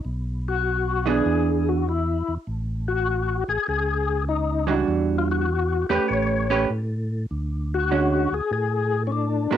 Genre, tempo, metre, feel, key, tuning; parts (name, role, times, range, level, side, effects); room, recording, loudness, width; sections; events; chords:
soul jazz organ trio; 99 BPM; 4/4; swing 67% on 8ths; A4 = 442 Hz
tonewheel organ; bass; 0.0-9.6 s; A1 to A2; -26 LUFS; equal; overdrive, chorus vibrato, slow rotary speaker
percussive tonewheel organ; melody; 0.5-9.6 s; C#4 to C#5; -24 LUFS; left 6 dB; slow rotary speaker, overdrive, chorus vibrato, cassette tape
vintage hollow-body jazz guitar; accompaniment; 1.1-9.6 s; D3 to B4; -22 LUFS; right 7 dB; cassette tape
moderate studio reverb, RT60 0.5 s; home recording on cassette; -21 LUFS; side -10 dB against mid
0.0-9.6 A section
0.1 Bm; 1.3 E7; 2.5 Amaj7; 4.9 Em9; 6.1 A9; 7.3 Dmaj7#11